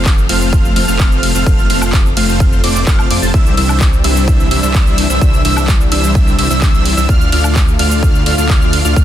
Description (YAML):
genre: EDM, festival progressive house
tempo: 128 BPM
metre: 4/4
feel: straight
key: C major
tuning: A4 = 440 Hz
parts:
  - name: lush unison pad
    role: sustained chords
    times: 0.0-9.0 s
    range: D3 to A4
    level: -23 LUFS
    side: equal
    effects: chorus, phaser, sidechain pumping
  - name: plucky unison lead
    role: arpeggios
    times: 0.0-9.0 s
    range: D6 to A6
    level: -20 LUFS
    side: right 1 dB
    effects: analog chorus, sidechain pumping, ping-pong delay
  - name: dense compressed supersaw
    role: riff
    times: 0.0-9.0 s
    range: G3 to A5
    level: -18 LUFS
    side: equal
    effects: sidechain pumping, ping-pong delay
  - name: wide detuned saw bass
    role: bass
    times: 0.0-9.0 s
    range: F1 to F2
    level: -16 LUFS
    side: equal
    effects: chorus, sidechain pumping
  - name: big-room dance drum kit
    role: drums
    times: 0.1-9.0 s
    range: cabasa, handclaps, hi-hat, ride cymbal, woodblock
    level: -20 LUFS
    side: right 1 dB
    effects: none
  - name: electronic kick drum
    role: drums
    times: 0.1-9.0 s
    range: none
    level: -12 LUFS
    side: equal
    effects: none
room: little or no reverb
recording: dense, heavily limited modern master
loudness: -9 LUFS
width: side -11 dB against mid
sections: 0.0-9.0 A section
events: none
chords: 0.0 F; 3.3 Cadd9; 7.1 Dm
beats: 0.06 0.53 1.00 | 1.47 1.93 2.40 2.87 | 3.34 3.81 4.28 4.75 | 5.21 5.68 6.15 6.62 | 7.09 7.56 8.03 8.50 | 8.96